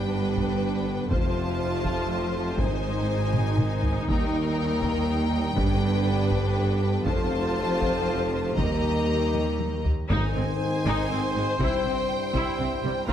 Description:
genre	cinematic, epic orchestral film score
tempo	121 BPM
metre	3/4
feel	straight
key	Ab major from 10.1 s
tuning	A4 = 440 Hz
part	clear symphonic violin section	melody	0.0-13.1 s	G5 to Bb5	-35 LUFS	left 2 dB	none
part	warm symphonic violin section	second line	0.0-13.1 s	Bb4 to Eb5	-33 LUFS	left 5 dB	none
part	clear symphonic viola section	accompaniment	0.0-13.1 s	G3 to G4	-33 LUFS	equal	none
part	clear French horn section	sustained chords	0.0-13.1 s	Bb3 to Bb4	-31 LUFS	left 4 dB	none
part	clear trombone section	sustained chords	0.0-13.1 s	G2 to A3	-34 LUFS	right 4 dB	none
part	rich studio double bass section	bass	0.0-13.1 s	F1 to Eb2	-30 LUFS	right 2 dB	none
part	rich symphonic cello section	bass	0.0-13.1 s	Eb2 to C3	-30 LUFS	right 2 dB	none
part	taiko ensemble	drums	0.4-13.1 s	none	-29 LUFS	equal	none
part	mellow trumpet section	stabs	10.1-13.1 s	Bb4 to C5	-32 LUFS	right 2 dB	none
part	timpani	percussion	10.1-10.8 s	Ab2	-32 LUFS	left 1 dB	none
room	moderate scoring stage reverb, RT60 1.6 s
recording	none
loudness	-23 LUFS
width	side -10 dB against mid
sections	0.0-10.1 A section; 10.1-13.1 B section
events	drum fill 3.3-4.1, 9.3-10.1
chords	0.0 G; 1.1 F; 2.6 Ab; 4.1 Eb; 5.6 G; 7.1 F; 8.6 Eb; 10.1 Ab; 11.6 C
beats	0.11 0.61 | 1.11 1.60 2.10 | 2.59 3.08 3.58 | 4.08 4.57 5.07 | 5.57 6.06 6.56 | 7.06 7.56 8.06 | 8.57 9.08 9.59 | 10.10 10.60 11.10 | 11.60 12.09 12.58 | 13.08

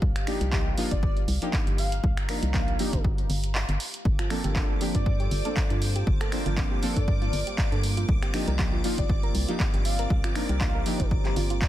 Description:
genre	deep house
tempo	119 BPM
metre	4/4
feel	swing 55% on 16ths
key	unclear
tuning	A4 = 441 Hz
part	organ-like FM bass	bass	0.0-11.7 s	G1 to G2	-28 LUFS	equal	sidechain pumping
part	electronic kick drum	drums	0.0-11.7 s	none	-26 LUFS	equal	none
part	deep dark ambient pad	texture	0.0-11.7 s	G4 to Bb5	-42 LUFS	left 1 dB	chorus, built-in reverb, sidechain pumping
part	punchy analog drum machine	drums	0.2-11.7 s	finger snaps, handclaps, hi-hat	-33 LUFS	right 1 dB	soft clipping on snare
part	deep mellow chord stab	stabs	0.3-11.0 s	F3 to C5	-32 LUFS	left 1 dB	chorus, ping-pong delay
part	airy dreamy lead	melody	0.9-11.0 s	D5 to F5	-37 LUFS	equal	chorus, digital delay
part	hollow soft pad	sustained chords	4.1-11.7 s	Bb3 to D5	-40 LUFS	right 2 dB	chorus, sidechain pumping
part	string machine, violins	texture	4.1-11.7 s	D6	-40 LUFS	equal	ensemble chorus
part	soft round pluck	arpeggios	4.2-11.7 s	F4 to D5	-37 LUFS	right 6 dB	chorus, cassette tape, sidechain pumping, ping-pong delay
room	digital ambience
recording	dense, heavily limited modern master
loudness	-23 LUFS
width	side -13 dB against mid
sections	0.0-11.7 A section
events	kick drops out 3.5-4.1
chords	0.0 Cm11; 4.1 Gm11; 8.1 Cm11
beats	| 0.02 0.52 1.03 1.53 | 2.04 2.54 3.04 3.55 | 4.05 4.56 5.06 5.57 | 6.07 6.57 7.08 7.58 | 8.09 8.59 9.10 9.60 | 10.10 10.61 11.11 11.62

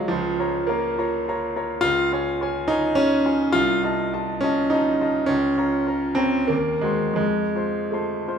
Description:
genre	classical, romantic character piece for solo piano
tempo	82-108 BPM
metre	3/4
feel	rubato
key	unclear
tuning	A4 = 440 Hz
part	bright grand piano	solo	0.0-8.4 s	Bb1 to C6	-20 LUFS	equal	none
room	moderate scoring stage reverb, RT60 1.6 s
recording	none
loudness	-20 LUFS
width	side -7 dB against mid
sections	0.0-8.4 A section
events	none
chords	0.1 Bbm/Db; 1.8 Db; 3.5 F7/C; 5.3 Bbm/Db; 6.5 Cdim/Eb; 7.2 F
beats	| 0.10 0.68 1.26 | 1.82 2.40 2.97 | 3.55 4.14 4.73 | 5.30 5.89 6.51 | 7.20 7.93

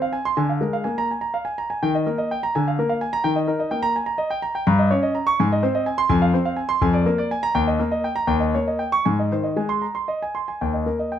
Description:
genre	classical, baroque-style suite movement for grand piano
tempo	76-86 BPM (dotted quarters)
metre	6/8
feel	rubato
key	Eb major, Ab major from 4.7 s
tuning	A4 = 439 Hz
part	warm concert grand piano	solo	0.0-11.2 s	Eb2 to Db6	-19 LUFS	equal	none
room	light reverb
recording	none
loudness	-19 LUFS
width	side -10 dB against mid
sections	0.0-10.6 A section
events	none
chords	0.4 Bb7/D; 1.8 Eb; 2.5 Bb7/D; 3.2 Eb; 4.7 Eb7/G; 5.4 Ab; 6.1 Fm; 6.8 Bb7/F; 7.5 Eb; 8.3 Eb7; 9.1 Ab; 10.6 Eb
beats	| 0.37 1.10 | 1.82 2.54 | 3.25 3.95 | 4.66 5.38 | 6.10 6.82 | 7.54 8.29 | 9.06 9.84 | 10.62

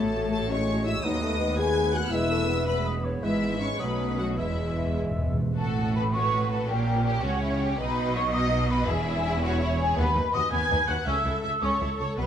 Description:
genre	classical, dramatic, fast romantic movement for symphony orchestra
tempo	109 BPM (dotted quarters)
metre	6/8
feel	rubato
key	E major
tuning	A4 = 440 Hz
part	clear symphonic violin section	melody	0.0-12.3 s	B3 to G#6	-35 LUFS	left 4 dB	none
part	mellow hollow flute section	second line	0.0-12.3 s	E4 to G#6	-30 LUFS	equal	none
part	rich symphonic violin section	second line	0.0-12.3 s	E4 to G#5	-35 LUFS	left 4 dB	none
part	warm oboe	second line	0.0-5.4 s	B4 to E5	-37 LUFS	right 1 dB	none
part	mellow bassoon	accompaniment	0.0-5.4 s	F#3 to B3	-35 LUFS	equal	none
part	rich symphonic viola section	accompaniment	0.0-12.3 s	G#3 to E5	-33 LUFS	right 1 dB	none
part	dark French horn section	sustained chords	0.0-5.0 s	E3 to G#4	-30 LUFS	left 6 dB	none
part	clear symphonic cello section	bass	0.0-12.2 s	C#2 to C#3	-30 LUFS	right 2 dB	none
part	rich symphonic double bass section	bass	0.0-12.2 s	E1 to D#2	-31 LUFS	right 2 dB	none
part	timpani	percussion	4.4-5.5, 8.9-9.4 s	E2	-32 LUFS	equal	none
room	moderate scoring stage reverb, RT60 1.7 s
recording	close, detailed microphones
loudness	-23 LUFS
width	side -9 dB against mid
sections	0.0-5.6 A section; 5.6-12.3 B section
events	timpani fill 4.4-5.6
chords	0.0 F#m/A; 1.0 B7/D#; 2.1 E; 3.2 E/G#; 3.8 B9; 4.4 E; 5.6 F#m/A; 6.7 A#dim7; 7.8 B; 8.9 E; 10.0 B/D#; 11.1 A/C#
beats	0.50 | 1.04 1.59 | 2.13 2.68 | 3.23 3.80 | 4.38 4.98 | 5.57 6.13 | 6.68 7.23 | 7.79 8.34 | 8.88 9.43 | 9.97 10.52 | 11.07 11.62 | 12.18

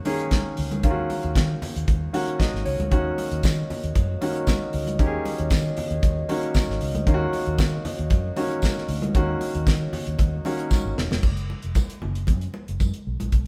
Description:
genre	disco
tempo	115 BPM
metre	4/4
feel	straight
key	unclear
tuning	A4 = 435 Hz
part	warm baby grand piano	accompaniment	0.0-11.3 s	D#3 to F#5	-30 LUFS	equal	none
part	damped 70s drum kit	drums	0.1-13.5 s	crash cymbal, hi-hat, kick drum, snare drum	-26 LUFS	equal	none
part	congas	percussion	0.1-13.5 s	none	-37 LUFS	equal	none
part	vintage muted fingered electric bass	bass	0.6-13.5 s	E1 to D#3	-30 LUFS	equal	none
part	dark French horn section	sustained chords	2.9-11.2 s	A#3 to D#5	-35 LUFS	equal	none
part	tambourine	percussion	3.4-12.9 s	none	-45 LUFS	equal	none
room	light reverb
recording	band playing live in one room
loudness	-24 LUFS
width	mono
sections	0.0-11.2 A section; 11.2-13.5 B section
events	grand piano fill 1.9-2.9; drum fill 10.7-11.2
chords	0.0 D#m7; 11.2 N.C.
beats	0.32 | 0.83 1.35 1.87 2.39 | 2.91 3.43 3.95 4.47 | 4.99 5.51 6.03 6.55 | 7.07 7.59 8.11 8.63 | 9.15 9.67 10.19 10.71 | 11.24 11.76 12.28 12.80 | 13.33

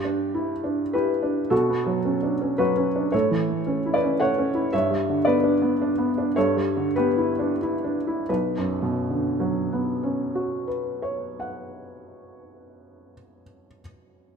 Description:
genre	neoclassical minimalist piano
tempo	83-116 BPM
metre	3/4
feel	rubato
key	B minor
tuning	A4 = 440 Hz
part	felt-muted upright piano	solo	0.0-14.4 s	B1 to F#5	-22 LUFS	equal	none
room	moderate scoring stage reverb, RT60 2.0 s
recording	minimal, uncompressed stereo recording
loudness	-21 LUFS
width	side -6 dB against mid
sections	0.0-1.5 A section; 1.5-8.3 B section; 8.3-12.3 C section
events	slowing down 3.9-8.3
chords	0.0 Em7/G; 1.5 Bmadd9; 3.1 A; 4.7 G; 6.4 Em7/G; 8.3 Bmadd9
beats	0.34 0.93 | 1.51 2.06 2.60 | 3.13 3.67 4.20 | 4.73 5.25 5.79 | 6.36 6.94 7.58 | 8.28 8.96 9.63 | 10.30 10.99 11.67

